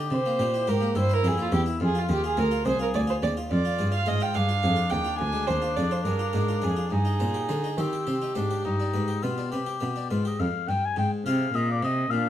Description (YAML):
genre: classical, baroque-style sonata movement with continuo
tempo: 70 BPM (dotted quarters)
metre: 12/8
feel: straight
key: unclear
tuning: A4 = 440 Hz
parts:
  - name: warm oboe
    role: melody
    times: 0.0-12.3 s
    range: C4 to Ab5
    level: -32 LUFS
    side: left 6 dB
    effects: none
  - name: harpsichord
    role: accompaniment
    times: 0.0-12.3 s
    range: C2 to C5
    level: -32 LUFS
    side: left 3 dB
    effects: none
  - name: rich cello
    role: bass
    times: 0.0-12.3 s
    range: C2 to Eb3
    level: -27 LUFS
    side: equal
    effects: none
  - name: dark violin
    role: second line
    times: 0.1-12.3 s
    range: D4 to Ab5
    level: -28 LUFS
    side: right 4 dB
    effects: none
room: light reverb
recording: close, detailed microphones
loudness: -23 LUFS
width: side -11 dB against mid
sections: 0.0-10.4 A section; 10.4-12.3 B section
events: none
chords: 0.1 C7; 1.8 Fm; 3.5 Ddim; 6.9 Cm/G; 8.7 G; 10.4 Fm